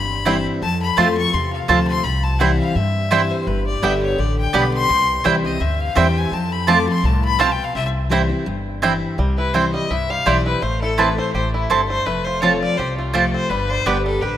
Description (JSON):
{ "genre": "bluegrass", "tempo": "168 BPM", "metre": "4/4", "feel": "swing 54% on 8ths", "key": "C major", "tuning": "A4 = 440 Hz", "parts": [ { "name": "clear fiddle", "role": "second line", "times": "0.0-7.9 s", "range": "B4 to D6", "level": "-23 LUFS", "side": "left 4 dB", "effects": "none" }, { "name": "picked steel-string acoustic guitar", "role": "accompaniment", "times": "0.0-14.4 s", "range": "F2 to G4", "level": "-22 LUFS", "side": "left 1 dB", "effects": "none" }, { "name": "upright bass", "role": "bass", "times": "0.0-14.4 s", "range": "F1 to G2", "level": "-23 LUFS", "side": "equal", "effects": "none" }, { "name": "bluegrass banjo", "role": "melody", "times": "0.3-14.4 s", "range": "F3 to G4", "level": "-30 LUFS", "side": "right 4 dB", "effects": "none" }, { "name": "mandolin", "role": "stabs", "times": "0.3-14.0 s", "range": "B3 to A5", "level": "-21 LUFS", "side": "right 5 dB", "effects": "none" }, { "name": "rich fiddle", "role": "melody", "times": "9.4-14.4 s", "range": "E4 to F5", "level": "-22 LUFS", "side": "left 3 dB", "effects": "tape echo" } ], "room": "moderate plate reverb, RT60 2.8 s", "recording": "rough home demo mix", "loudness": "-16 LUFS", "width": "side -11 dB against mid", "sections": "0.0-9.2 A section; 9.2-14.4 B section", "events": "fiddle solo 0.0-9.2", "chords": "0.0 C; 0.6 F; 2.0 C; 3.5 G; 4.9 C; 6.3 F; 7.8 C; 10.6 Am; 12.1 F; 13.5 G" }